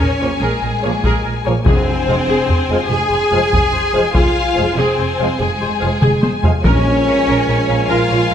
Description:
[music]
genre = cinematic, epic orchestral film score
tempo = 96 BPM (dotted quarters)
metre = 12/8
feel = straight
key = Bb minor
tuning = A4 = 442 Hz
[part]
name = warm symphonic violin section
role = melody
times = 0.0-8.3 s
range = Ab5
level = -24 LUFS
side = left 6 dB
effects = none
[part]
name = rich symphonic violin section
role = second line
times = 0.0-8.3 s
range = Ab4 to Ab5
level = -23 LUFS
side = left 4 dB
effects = none
[part]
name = warm symphonic viola section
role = accompaniment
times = 0.0-8.3 s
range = Ab4 to F5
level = -22 LUFS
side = equal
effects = none
[part]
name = rich symphonic cello section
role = bass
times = 0.0-8.3 s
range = Ab3 to Ab4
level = -19 LUFS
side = right 1 dB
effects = none
[part]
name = rich symphonic double bass section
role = bass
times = 0.0-8.3 s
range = F1 to Bb1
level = -22 LUFS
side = right 2 dB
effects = none
[part]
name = solo taiko drums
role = drums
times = 0.0-7.0 s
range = none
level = -17 LUFS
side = left 1 dB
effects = none
[part]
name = clear trombone section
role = sustained chords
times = 0.2-8.3 s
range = F3 to Bb3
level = -25 LUFS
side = right 3 dB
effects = none
[part]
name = mellow French horn section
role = sustained chords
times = 0.2-8.3 s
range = Ab4 to Db5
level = -25 LUFS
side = left 6 dB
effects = none
[part]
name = timpani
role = percussion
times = 1.7-2.2, 6.6-7.2 s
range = F2 to Bb2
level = -23 LUFS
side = left 1 dB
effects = none
[sound]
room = moderate recital hall reverb, RT60 1.4 s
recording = none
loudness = -13 LUFS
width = side -9 dB against mid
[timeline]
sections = 0.0-8.3 A section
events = drum fill 6.0-6.6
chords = 0.0 Bbm7; 1.7 Fm; 6.6 Bbm7

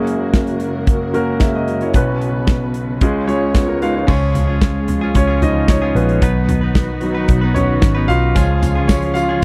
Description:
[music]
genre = piano-driven pop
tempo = 112 BPM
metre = 4/4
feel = straight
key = F# major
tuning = A4 = 440 Hz
[part]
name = clear grand piano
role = accompaniment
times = 0.0-9.4 s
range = F#1 to E#5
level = -20 LUFS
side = equal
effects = none
[part]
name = dark studio string section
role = sustained chords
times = 0.0-9.4 s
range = C#3 to C#5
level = -27 LUFS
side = equal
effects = none
[part]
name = modern studio drum kit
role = drums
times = 0.1-9.4 s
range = crash cymbal, hi-hat, kick drum, snare drum, toms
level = -18 LUFS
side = equal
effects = none
[part]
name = direct-recorded clean electric guitar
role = riff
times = 4.1-9.4 s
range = B2 to B4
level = -27 LUFS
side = equal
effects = none
[part]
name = vintage muted picked electric bass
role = bass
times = 4.1-9.4 s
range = G#1 to C#2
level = -20 LUFS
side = equal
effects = none
[part]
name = tambourine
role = percussion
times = 8.4-9.3 s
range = none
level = -41 LUFS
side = equal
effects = none
[sound]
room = little or no reverb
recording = dry, close 1970s-style studio recording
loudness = -16 LUFS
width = mono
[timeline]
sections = 0.0-4.1 A section; 4.1-9.4 B section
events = grand piano solo 4.1-9.4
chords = 0.0 F#add9; 1.9 Bsus2; 3.0 C#; 6.2 B; 8.4 C#

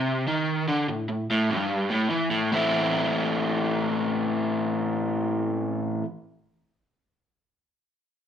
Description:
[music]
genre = rock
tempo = 146 BPM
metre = 4/4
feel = straight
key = A minor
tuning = A4 = 440 Hz
[part]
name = crunchy overdriven guitar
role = solo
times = 0.0-6.1 s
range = G2 to E4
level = -23 LUFS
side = equal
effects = none
[sound]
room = moderate large studio reverb, RT60 0.8 s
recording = band playing live in one room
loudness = -23 LUFS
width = side -8 dB against mid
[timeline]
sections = 0.0-2.5 A section; 2.5-5.8 B section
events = none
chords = 0.0 N.C.; 2.5 Am

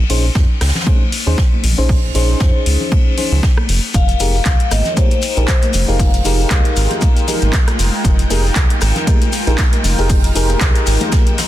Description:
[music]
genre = deep house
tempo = 117 BPM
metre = 4/4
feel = swing 56% on 16ths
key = unclear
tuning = A4 = 444 Hz
[part]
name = round analog bass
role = bass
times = 0.0-11.0 s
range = F1 to F2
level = -16 LUFS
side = equal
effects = sidechain pumping
[part]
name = mellow FM electric piano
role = stabs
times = 0.1-11.4 s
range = Db4 to C5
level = -23 LUFS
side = left 1 dB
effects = chorus, sidechain pumping, digital delay
[part]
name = deep house drum kit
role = drums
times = 0.1-11.5 s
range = handclaps, hi-hat, rim click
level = -22 LUFS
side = left 1 dB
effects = overdrive, studio reverb
[part]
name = jazz brush drum kit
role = drums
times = 0.1-11.5 s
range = hi-hat, ride cymbal, snare drum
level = -26 LUFS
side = left 2 dB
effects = high-pass filter on cymbals, studio reverb, high-pass filter on hats, high-pass filter on snare, high-pass filter on room
[part]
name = electronic kick drum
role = drums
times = 0.4-11.2 s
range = none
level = -14 LUFS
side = equal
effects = studio reverb
[part]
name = congas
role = percussion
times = 0.8-11.5 s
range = none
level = -26 LUFS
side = left 4 dB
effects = none
[part]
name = vibraphone with soft mallets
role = melody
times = 3.9-7.4 s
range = C5 to F5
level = -23 LUFS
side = left 6 dB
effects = ping-pong delay
[part]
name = warm analog pad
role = sustained chords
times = 3.9-11.5 s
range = Ab3 to G5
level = -25 LUFS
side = right 1 dB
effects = chorus, sidechain pumping
[part]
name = shekere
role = percussion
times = 3.9-11.5 s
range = none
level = -28 LUFS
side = left 6 dB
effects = none
[sound]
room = small room ambience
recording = dense, heavily limited modern master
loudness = -12 LUFS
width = side -14 dB against mid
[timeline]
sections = 0.0-11.5 A section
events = none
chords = 0.0 Bbm11; 3.7 Fm11

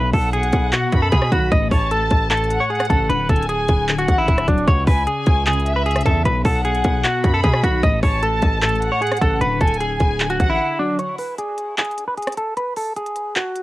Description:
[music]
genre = hip hop, trap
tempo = 152 BPM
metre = 4/4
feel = half-time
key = unclear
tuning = A4 = 440 Hz
[part]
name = semi-hollow electric guitar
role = melody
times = 0.0-13.6 s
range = D4 to D#5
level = -21 LUFS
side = equal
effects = low-pass filter, cassette tape
[part]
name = soft electric-piano-like synth keys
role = accompaniment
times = 0.0-11.0 s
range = A2 to F#3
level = -26 LUFS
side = left 2 dB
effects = chorus, phaser, low-pass filter, cassette tape
[part]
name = distorted 808-style bass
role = bass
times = 0.0-10.6 s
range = D1 to B2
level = -22 LUFS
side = equal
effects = distortion
[part]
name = dark studio violin section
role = second line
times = 0.1-10.6 s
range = E5 to B5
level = -26 LUFS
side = left 1 dB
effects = cassette tape, tape echo
[part]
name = trap drum kit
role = drums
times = 0.1-13.6 s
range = handclaps, hi-hat, kick drum, rim click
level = -19 LUFS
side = equal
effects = cassette tape
[sound]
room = little or no reverb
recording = home recording on cassette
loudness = -16 LUFS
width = side -17 dB against mid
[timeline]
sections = 0.0-11.0 A section; 11.0-13.6 B section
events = drums muted 10.6-11.0; break 11.0-13.6; filter sweep 11.0-13.6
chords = 0.0 B; 1.5 A; 3.1 D; 4.7 C#m; 6.3 B; 7.8 A; 9.4 D; 11.0 N.C.

